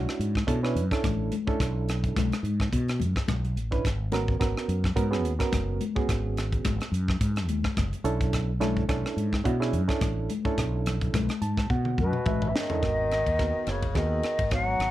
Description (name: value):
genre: electric jazz fusion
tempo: 107 BPM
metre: 4/4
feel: swing 55% on 16ths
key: G# minor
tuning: A4 = 440 Hz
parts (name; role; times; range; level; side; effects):
- barky reed electric piano; accompaniment; 0.0-14.9 s; B3 to A5; -31 LUFS; right 4 dB; tremolo
- mellow fretless electric bass; bass; 0.0-14.9 s; F#1 to B2; -28 LUFS; equal; none
- tight funk drum kit; drums; 0.1-14.9 s; hi-hat, kick drum, ride cymbal, rim click, snare drum, toms; -29 LUFS; equal; none
- congas; percussion; 0.5-12.6 s; none; -34 LUFS; left 6 dB; none
- mellow hollow jazz flute; melody; 12.0-14.9 s; B4 to F#5; -28 LUFS; left 1 dB; none
- clear bass clarinet; second line; 12.0-14.9 s; B2 to F#3; -34 LUFS; left 3 dB; none
room: light reverb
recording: none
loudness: -24 LUFS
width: side -14 dB against mid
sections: 0.0-12.8 A section; 12.8-14.9 B section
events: reed electric piano fill 11.1-12.8; drum fill 11.7-12.8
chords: 0.0 Bm11; 3.8 G#m11; 8.0 Bm11; 12.8 G#m9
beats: 0.47 1.03 | 1.59 2.16 2.72 3.28 | 3.84 4.40 4.96 5.52 | 6.08 6.65 7.21 7.77 | 8.33 8.89 9.45 10.01 | 10.57 11.14 11.70 12.26 | 12.82 13.39 13.95 14.51